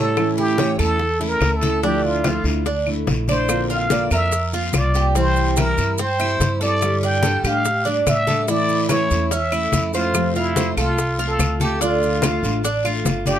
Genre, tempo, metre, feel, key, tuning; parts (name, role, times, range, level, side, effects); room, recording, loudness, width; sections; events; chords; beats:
latin, Cuban son and guajira; 144 BPM; 4/4; straight; D minor; A4 = 439 Hz
trumpet with plunger mute; melody; 0.0-13.4 s; E4 to G5; -22 LUFS; equal
fingerpicked steel-string acoustic guitar; accompaniment; 0.0-13.4 s; C3 to G4; -24 LUFS; equal
Cuban tres; arpeggios; 0.0-13.4 s; C4 to D5; -25 LUFS; right 4 dB
upright bass; bass; 0.0-13.4 s; G1 to A2; -23 LUFS; equal
bongos; percussion; 0.2-13.4 s; -28 LUFS; left 8 dB
claves; percussion; 0.2-13.1 s; -29 LUFS; left 1 dB
congas; percussion; 0.2-13.4 s; -26 LUFS; left 2 dB
guiro; percussion; 0.2-13.4 s; -33 LUFS; left 3 dB
maracas; percussion; 3.5-13.4 s; -30 LUFS; right 3 dB
little or no reverb; close, detailed microphones; -17 LUFS; side -10 dB against mid
0.0-13.4 A section
0.2 A; 1.8 Dmadd9; 3.5 Bbadd9; 5.2 C; 6.8 Gsus2; 8.5 A; 10.1 F; 11.8 Dm
| 0.17 0.59 1.00 1.42 | 1.83 2.25 2.66 3.08 | 3.49 3.91 4.33 4.74 | 5.16 5.57 5.99 6.41 | 6.82 7.24 7.65 8.07 | 8.49 8.90 9.32 9.73 | 10.15 10.56 10.98 11.40 | 11.81 12.23 12.64 13.06